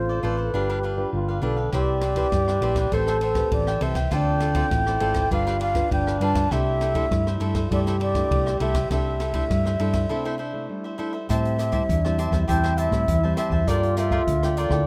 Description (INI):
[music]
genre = samba and choro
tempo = 100 BPM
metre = 4/4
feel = straight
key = C major, A minor from 11.3 s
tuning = A4 = 436 Hz
[part]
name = baroque flute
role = melody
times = 0.0-14.9 s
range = B4 to A5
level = -29 LUFS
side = equal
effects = plate reverb
[part]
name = breathy trombone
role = second line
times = 0.0-14.9 s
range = C4 to A4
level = -31 LUFS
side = equal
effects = plate reverb
[part]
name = nylon-string guitar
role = accompaniment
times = 0.0-14.9 s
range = A2 to B4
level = -33 LUFS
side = equal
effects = plate reverb
[part]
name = hollow-body short-scale fingered electric bass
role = bass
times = 0.0-14.8 s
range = G1 to A2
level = -28 LUFS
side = equal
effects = none
[part]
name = cavaquinho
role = accompaniment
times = 0.1-14.9 s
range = D4 to A5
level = -35 LUFS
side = equal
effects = plate reverb
[part]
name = open jazz drum kit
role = drums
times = 1.7-14.9 s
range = hi-hat, kick drum, ride cymbal, rim click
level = -31 LUFS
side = equal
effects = none
[sound]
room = light reverb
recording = rough home demo mix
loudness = -23 LUFS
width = mono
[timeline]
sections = 0.0-11.3 A section; 11.3-14.9 B section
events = break 10.1-11.3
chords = 0.0 Dm7; 0.5 G7; 1.7 Cmaj7; 2.9 Am9; 4.1 Dm7; 5.3 G7; 6.5 C69; 11.3 Am7; 13.7 Gm9